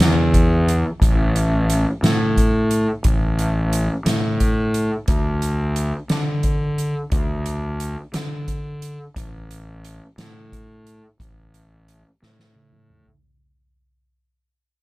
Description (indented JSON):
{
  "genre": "psychedelic rock",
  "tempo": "59 BPM (dotted quarters)",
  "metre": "6/8",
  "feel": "straight",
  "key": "unclear",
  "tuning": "A4 = 440 Hz",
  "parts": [
    { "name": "fuzz fingered electric bass", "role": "bass", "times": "0.0-13.1 s", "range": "A1 to D3", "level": "-20 LUFS", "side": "equal", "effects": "overdrive" },
    { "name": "soft-mallet drum kit", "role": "drums", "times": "0.0-13.2 s", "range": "hi-hat, kick drum, snare drum, toms", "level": "-21 LUFS", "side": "equal", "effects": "none" }
  ],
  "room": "little or no reverb",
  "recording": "none",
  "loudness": "-18 LUFS",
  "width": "side -20 dB against mid",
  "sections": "0.0-13.2 A section",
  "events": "fade-out 0.0-13.2; drum fill 12.2-13.2",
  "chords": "none"
}